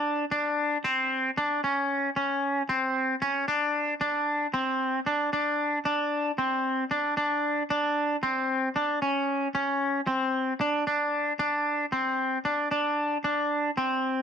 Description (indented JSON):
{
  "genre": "progressive instrumental, progressive",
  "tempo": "227 BPM (eighths)",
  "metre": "7/8",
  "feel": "straight",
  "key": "unclear",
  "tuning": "A4 = 441 Hz",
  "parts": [
    { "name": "twangy electric guitar", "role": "solo", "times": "0.0-14.2 s", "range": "C4 to D4", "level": "-25 LUFS", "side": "equal", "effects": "wide subtle chorus" }
  ],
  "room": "digital ambience",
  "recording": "dry, close 1970s-style studio recording",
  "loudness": "-25 LUFS",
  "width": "side -7 dB against mid",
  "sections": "0.0-10.9 A section; 10.9-14.2 B section",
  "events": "none",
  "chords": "none"
}